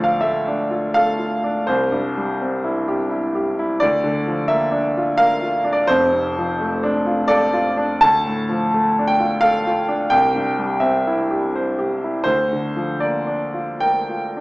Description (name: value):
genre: neoclassical minimalist piano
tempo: 85 BPM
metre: 3/4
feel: uneven beats, rubato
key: unclear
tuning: A4 = 440 Hz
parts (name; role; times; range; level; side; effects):
- clear grand piano; solo; 0.0-14.4 s; F1 to D6; -17 LUFS; equal; none
room: wet recital hall reverb, RT60 1.4 s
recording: recorded in a church or concert hall, small speaker sound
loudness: -17 LUFS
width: side -22 dB against mid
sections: 0.0-14.4 A section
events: none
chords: 0.0 Dm; 1.7 C; 3.8 Bb/D; 5.9 F6; 8.0 Dm; 10.1 C; 12.3 Bb/D